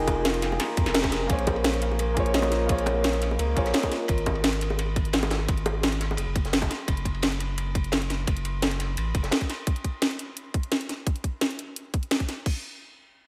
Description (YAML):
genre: liquid drum and bass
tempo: 172 BPM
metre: 4/4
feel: straight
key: Bb minor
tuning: A4 = 440 Hz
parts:
  - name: warm grand piano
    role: accompaniment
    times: 0.0-3.9 s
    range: F3 to G5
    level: -32 LUFS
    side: equal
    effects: analog delay
  - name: concert harp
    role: arpeggios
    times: 0.0-6.6 s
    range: Bb3 to Bb5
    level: -34 LUFS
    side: equal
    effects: low-pass filter, analog delay
  - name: saturated sub bass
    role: bass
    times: 0.0-9.3 s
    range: F1 to F2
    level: -31 LUFS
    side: equal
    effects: none
  - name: crunchy breakbeat drum kit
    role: drums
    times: 0.1-9.6 s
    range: ride cymbal, snare drum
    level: -38 LUFS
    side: equal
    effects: high-pass filter on cymbals, high-pass filter on snare, high-pass filter on room
  - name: drum and bass drum kit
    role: drums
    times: 0.1-12.5 s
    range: crash cymbal, hi-hat, ride cymbal, snare drum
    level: -30 LUFS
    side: equal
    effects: overdrive
  - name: electronic kick drum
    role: drums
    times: 0.1-12.5 s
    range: none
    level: -29 LUFS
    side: equal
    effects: overdrive
  - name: bongos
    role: percussion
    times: 0.1-6.7 s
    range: none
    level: -36 LUFS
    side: equal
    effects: none
room: moderate lush hall reverb, RT60 1.6 s, studio ambience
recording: dreamy mix soaked in reverb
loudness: -26 LUFS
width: mono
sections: 0.0-1.3 A section; 1.3-12.5 B section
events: drop 0.0-1.3; band accent 0.9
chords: 0.0 Fm9; 1.3 Bbm9; 3.9 Absus2; 6.7 N.C.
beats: 0.25 0.60 0.95 | 1.30 1.65 2.00 2.34 | 2.69 3.04 3.39 3.74 | 4.09 4.44 4.79 5.13 | 5.48 5.83 6.18 6.53 | 6.88 7.23 7.58 7.92 | 8.27 8.62 8.97 9.32 | 9.67 10.02 10.37 10.72 | 11.06 11.41 11.76 12.11 | 12.46